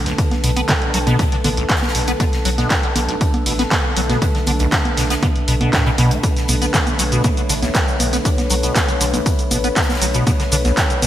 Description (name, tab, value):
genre	acid house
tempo	119 BPM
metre	4/4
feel	straight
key	B minor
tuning	A4 = 439 Hz
part	warm analog pad	sustained chords	0.0-11.1 s	D3 to B4	-26 LUFS	right 1 dB	chorus, sidechain pumping
part	saturated sub bass	bass	0.0-11.1 s	A1 to B1	-22 LUFS	equal	tube saturation, sidechain pumping
part	warbly tape-like pad	texture	0.0-11.1 s	D4 to A5	-27 LUFS	left 1 dB	chorus, built-in reverb, sidechain pumping
part	liquid acid bass	riff	0.1-11.1 s	B1 to B3	-21 LUFS	equal	phaser, tube saturation, ensemble chorus, digital delay
part	big rock drum kit	drums	0.1-11.1 s	hi-hat, snare drum	-30 LUFS	left 2 dB	high-pass filter on hats, high-pass filter on snare, high-pass filter on room, gated reverb
part	punchy analog drum machine	drums	0.1-11.1 s	cabasa, congas, handclaps, hi-hat	-20 LUFS	right 1 dB	gated reverb
part	electronic kick drum	drums	0.2-10.9 s	none	-19 LUFS	equal	none
room	light reverb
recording	bright 1980s-style digital production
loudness	-15 LUFS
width	side -12 dB against mid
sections	0.0-11.1 A section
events	none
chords	0.0 Bm7